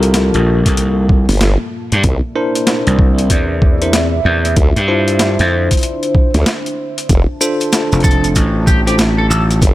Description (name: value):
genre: glitch hop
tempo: 95 BPM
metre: 4/4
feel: swing 63% on 16ths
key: unclear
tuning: A4 = 440 Hz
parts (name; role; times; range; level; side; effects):
- dark analog pad; sustained chords; 0.0-9.7 s; G3 to A5; -22 LUFS; right 1 dB; chorus, phaser, sidechain pumping
- bell-like tine electric piano; stabs; 0.0-9.0 s; D4 to C5; -19 LUFS; left 1 dB; fast stereo tremolo, sidechain pumping, digital delay
- gritty slap bass; bass; 0.0-9.6 s; F1 to G2; -14 LUFS; equal; overdrive
- boom bap sampler-style drum kit; drums; 0.0-9.7 s; hi-hat, rim click, snare drum; -18 LUFS; equal; overdrive
- electronic kick drum; drums; 0.7-9.7 s; none; -13 LUFS; equal; overdrive
- formant-sweep wobble bass; bass; 1.3-9.7 s; F1 to D2; -13 LUFS; equal; chorus
- maracas; percussion; 7.1-9.7 s; none; -21 LUFS; right 4 dB; none
- lightly driven lead guitar; melody; 8.0-9.4 s; G4 to A4; -20 LUFS; equal; digital delay
room: digital ambience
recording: none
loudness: -11 LUFS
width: side -16 dB against mid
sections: 0.0-9.7 A section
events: none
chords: 0.0 Gm9; 2.0 C9; 4.6 Dm9; 7.1 F6